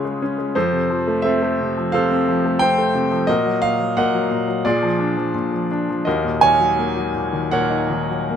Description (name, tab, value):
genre	classical, lyrical solo piano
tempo	72-89 BPM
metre	4/4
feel	rubato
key	unclear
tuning	A4 = 440 Hz
part	bright grand piano	solo	0.0-8.4 s	Eb2 to Ab5	-17 LUFS	equal	none
room	light reverb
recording	close, detailed microphones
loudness	-17 LUFS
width	side -8 dB against mid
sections	0.0-8.4 A section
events	none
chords	0.0 Db; 0.6 F; 3.3 Ebm/Bb; 4.6 Bb7; 6.1 Ebm7